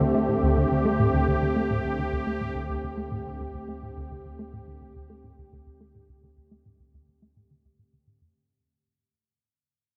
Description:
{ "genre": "ambient, sequencer-driven space music", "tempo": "106 BPM", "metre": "4/4", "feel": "straight", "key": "unclear", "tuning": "A4 = 441 Hz", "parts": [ { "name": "sweeping resonant pad", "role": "sustained chords", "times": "0.0-8.3 s", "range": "D3 to G4", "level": "-29 LUFS", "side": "equal", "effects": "chorus" }, { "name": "plucky analog bass", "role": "riff", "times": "0.0-8.3 s", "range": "D2 to A3", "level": "-30 LUFS", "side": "equal", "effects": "analog chorus, delay" }, { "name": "warm sub bass", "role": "bass", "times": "0.0-8.3 s", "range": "D2", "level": "-41 LUFS", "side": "equal", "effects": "none" } ], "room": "wet plate reverb, RT60 2.8 s", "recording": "dreamy mix soaked in reverb", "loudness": "-26 LUFS", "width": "mono", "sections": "0.0-8.3 A section", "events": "fade-out 0.0-8.3; filter sweep on analog synth bass 0.0-8.3", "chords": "0.0 D7(no3)", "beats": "0.43 0.99 | 1.56 2.12 2.69 3.26 | 3.82 4.39 4.95 5.52 | 6.09 6.65 7.22 7.78" }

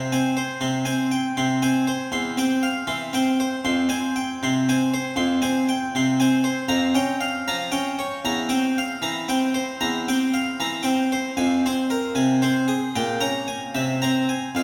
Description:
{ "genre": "classical, baroque-style suite movement for harpsichord", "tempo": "78 BPM (dotted quarters)", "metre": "12/8", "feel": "rubato", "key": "F minor from 5.2 s", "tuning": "A4 = 440 Hz", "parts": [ { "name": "harpsichord", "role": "solo", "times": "0.0-14.6 s", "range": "E2 to C6", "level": "-23 LUFS", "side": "equal", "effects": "none" } ], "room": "wet church reverb, RT60 3.0 s", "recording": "none", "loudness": "-23 LUFS", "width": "mono", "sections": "0.0-14.6 A section", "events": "none", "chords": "0.0 Fm (rootless); 2.1 C/E; 3.7 Fm; 6.7 Gm7b5/F; 8.2 C7/E; 11.4 Fm; 12.9 Gdim/Bb; 13.7 C7", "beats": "0.64 1.39 | 2.15 2.90 3.66 4.42 | 5.17 5.94 6.70 7.47 | 8.24 9.01 9.80 10.60 | 11.38 12.15 12.94 13.74 | 14.56" }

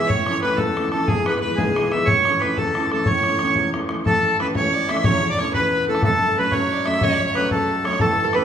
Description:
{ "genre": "celtic folk, Celtic jig", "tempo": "122 BPM (dotted quarters)", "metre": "6/8", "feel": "straight", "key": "A major", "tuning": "A4 = 441 Hz", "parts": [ { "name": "accordion", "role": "melody", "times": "0.0-8.4 s", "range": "G#4 to E5", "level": "-20 LUFS", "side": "right 2 dB", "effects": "none" }, { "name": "clear fiddle", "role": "second line", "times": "0.0-8.4 s", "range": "G#4 to E5", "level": "-26 LUFS", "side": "left 3 dB", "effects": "none" }, { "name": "bright upright piano", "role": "accompaniment", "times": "0.0-8.4 s", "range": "E1 to C#4", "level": "-25 LUFS", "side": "equal", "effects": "none" }, { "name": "bodhran", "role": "percussion", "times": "0.1-8.4 s", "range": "none", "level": "-24 LUFS", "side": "left 1 dB", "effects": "none" }, { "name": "concert harp", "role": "second line", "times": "8.0-8.4 s", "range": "A4 to B4", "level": "-22 LUFS", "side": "right 4 dB", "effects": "none" } ], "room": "wet recital hall reverb, RT60 1.3 s", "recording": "recorded in a church or concert hall", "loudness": "-17 LUFS", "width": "side -8 dB against mid", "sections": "0.0-4.1 A section; 4.1-8.4 B section", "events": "none", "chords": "0.1 A; 1.1 E; 2.1 A; 6.0 F#m", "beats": "| 0.10 0.60 | 1.09 1.59 | 2.08 2.58 | 3.07 3.56 | 4.06 4.55 | 5.05 5.54 | 6.03 6.53 | 7.02 7.51 | 8.01" }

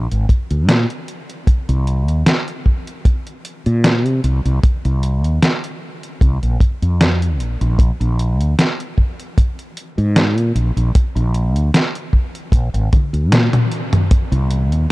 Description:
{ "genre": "vaporwave", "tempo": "76 BPM", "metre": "4/4", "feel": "swing 54% on 16ths", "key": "C minor", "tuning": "A4 = 440 Hz", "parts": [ { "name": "mellow fretless electric bass", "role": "bass", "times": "0.0-14.9 s", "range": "Ab1 to C3", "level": "-15 LUFS", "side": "equal", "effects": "none" }, { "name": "detuned 8-bit digital drum machine", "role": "drums", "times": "0.1-14.9 s", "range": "hi-hat, snare drum, toms", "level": "-18 LUFS", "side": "equal", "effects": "none" }, { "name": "kick drum", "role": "drums", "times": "0.3-14.3 s", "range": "none", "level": "-13 LUFS", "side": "equal", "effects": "none" } ], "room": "little or no reverb", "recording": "dark, warm production, cassette tape", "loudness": "-14 LUFS", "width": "side -20 dB against mid", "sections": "0.0-14.1 A section", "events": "drum fill 12.9-14.1; kick drops out 13.3-14.1; band accent 13.3-13.7", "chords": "none", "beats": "0.69 | 1.48 2.27 3.06 3.85 | 4.63 5.42 6.21 7.00 | 7.79 8.58 9.37 10.16 | 10.95 11.74 12.53 13.32 | 14.11" }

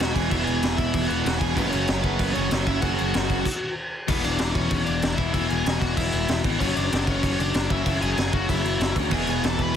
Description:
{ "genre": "punk rock", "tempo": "191 BPM", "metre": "4/4", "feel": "straight", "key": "unclear", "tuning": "A4 = 440 Hz", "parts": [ { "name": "biting lead guitar", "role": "melody", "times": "0.0-9.8 s", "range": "B3 to B5", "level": "-29 LUFS", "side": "left 2 dB", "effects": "overdrive, digital delay" }, { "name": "crunchy overdriven guitar", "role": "riff", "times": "0.0-3.5, 9.1-9.8 s", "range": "E2 to F#3", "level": "-28 LUFS", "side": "right 16 dB", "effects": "none" }, { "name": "distorted electric guitar", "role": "riff", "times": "0.0-9.8 s", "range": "E2 to F#3", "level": "-30 LUFS", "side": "right 2 dB", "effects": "overdrive" }, { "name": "raw garage guitar", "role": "riff", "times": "0.0-9.8 s", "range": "E2 to F#3", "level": "-30 LUFS", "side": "left 18 dB", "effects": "overdrive" }, { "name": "modern bright picked electric bass", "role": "bass", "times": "0.0-9.7 s", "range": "E1 to D2", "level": "-28 LUFS", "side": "equal", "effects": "none" }, { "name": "raw garage drum kit", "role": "drums", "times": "0.0-9.7 s", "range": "crash cymbal, kick drum, snare drum", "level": "-26 LUFS", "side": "equal", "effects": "none" } ], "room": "little or no reverb", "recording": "dense, heavily limited modern master", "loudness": "-21 LUFS", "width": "side -9 dB against mid", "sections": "0.0-4.1 A section; 4.1-9.8 A section", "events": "stop 3.5-4.1", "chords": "0.0 E; 1.6 F#5; 4.1 E; 6.6 F#5; 9.1 E", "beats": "0.00 | 0.31 0.63 0.94 1.26 | 1.57 1.88 2.20 2.51 | 2.83 3.14 3.45 3.77 | 4.08 4.39 4.71 5.02 | 5.34 5.65 5.97 6.28 | 6.59 6.91 7.22 7.54 | 7.85 8.17 8.48 8.80 | 9.11 9.43 9.74" }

